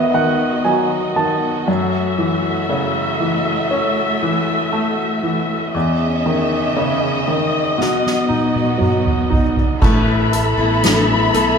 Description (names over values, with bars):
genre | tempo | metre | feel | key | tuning
pop ballad | 59 BPM | 4/4 | straight | unclear | A4 = 440 Hz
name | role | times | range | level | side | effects
clear baby grand piano | accompaniment | 0.0-11.6 s | D#2 to A5 | -18 LUFS | equal | none
warm studio string section | sustained chords | 0.0-11.6 s | C#3 to B5 | -19 LUFS | equal | none
soft-mallet drum kit | drums | 7.8-11.6 s | crash cymbal, hi-hat, kick drum, snare drum, toms | -19 LUFS | right 1 dB | none
picked steel-string acoustic guitar | arpeggios | 9.8-11.6 s | A3 to B4 | -20 LUFS | left 5 dB | none
fretless electric bass | bass | 9.8-11.6 s | A1 to B1 | -20 LUFS | right 1 dB | none
room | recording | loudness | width
wet recital hall reverb, RT60 1.3 s | recorded in a church or concert hall | -15 LUFS | side -6 dB against mid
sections
0.0-9.8 A section; 9.8-11.6 B section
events
grand piano fill 0.0-1.7; drum fill 7.8-9.8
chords
0.0 B/D#; 1.7 F#m7; 5.7 C#madd9/E; 7.8 B; 9.8 Asus2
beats
0.66 | 1.68 2.70 3.71 4.73 | 5.75 6.77 7.78 8.80 | 9.82 10.83